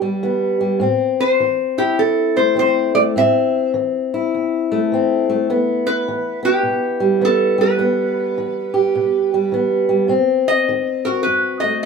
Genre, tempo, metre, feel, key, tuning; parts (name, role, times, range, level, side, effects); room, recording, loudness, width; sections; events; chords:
acoustic country blues, solo or duo; 103 BPM; 4/4; swing 63% on 8ths; E minor; A4 = 440 Hz
fingerpicked steel-string acoustic guitar; accompaniment; 0.0-11.9 s; E2 to G4; -17 LUFS; left 1 dB
lap resonator guitar; melody; 1.2-11.9 s; G4 to E5; -18 LUFS; right 2 dB
wet small room reverb, RT60 0.6 s; band playing live in one room; -15 LUFS; side -5 dB against mid
0.0-11.9 A section
0.0 Em; 0.8 Am; 5.5 Em; 10.1 B7b9